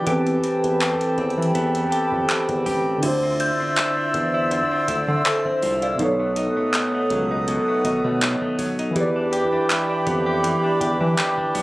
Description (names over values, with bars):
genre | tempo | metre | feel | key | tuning
contemporary R&B | 81 BPM | 4/4 | swing 54% on 16ths | unclear | A4 = 441 Hz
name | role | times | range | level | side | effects
muted felt-like synth keys | accompaniment | 0.0-11.6 s | B2 to F5 | -24 LUFS | equal | chorus
direct-recorded clean electric guitar | arpeggios | 0.0-11.6 s | B2 to G4 | -26 LUFS | left 1 dB | ping-pong delay
glassy synth bell | texture | 0.0-6.3 s | C6 to A6 | -30 LUFS | equal | chorus, phaser, ping-pong delay
breathy mellow small flute group | sustained chords | 0.1-11.6 s | G4 to E6 | -25 LUFS | equal | none
round analog bass | bass | 0.1-11.6 s | A1 to E3 | -26 LUFS | equal | none
booming analog drum machine | drums | 0.1-11.6 s | crash cymbal, handclaps, hi-hat, kick drum | -27 LUFS | equal | none
room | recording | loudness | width
light reverb | recorded on a phone in the room, studio ambience, compression | -19 LUFS | side -19 dB against mid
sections
0.0-3.0 A section; 3.0-11.6 B section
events
none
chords
0.1 Am9/E; 3.0 Dm9; 6.0 B7; 9.0 Em7